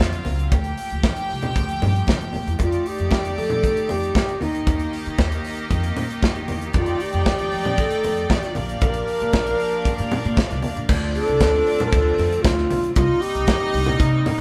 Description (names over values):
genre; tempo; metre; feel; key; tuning
disco; 116 BPM; 4/4; straight; unclear; A4 = 437 Hz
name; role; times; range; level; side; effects
clear studio string section; second line; 0.0-14.4 s; A3 to G5; -32 LUFS; equal; none
rich studio string section; sustained chords; 0.0-14.4 s; C3 to D5; -33 LUFS; equal; none
upright bass; bass; 0.0-14.4 s; Bb1 to F3; -27 LUFS; equal; none
modern studio drum kit; drums; 0.0-14.4 s; crash cymbal, hi-hat, kick drum, snare drum; -25 LUFS; equal; none
congas; percussion; 0.2-14.4 s; none; -32 LUFS; equal; none
mellow hollow wooden-headed alto flute; melody; 2.6-14.4 s; Eb4 to Bb4; -25 LUFS; equal; none
room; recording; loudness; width
moderate stone room reverb, RT60 1.1 s; band playing live in one room; -21 LUFS; mono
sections
0.0-2.6 A section; 2.6-10.9 B section; 10.9-14.4 C section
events
none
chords
0.0 D7alt; 0.5 Gm9; 2.6 F13; 4.4 Eb; 6.7 F13; 8.6 Bb6; 10.9 Dm7; 13.0 Cm7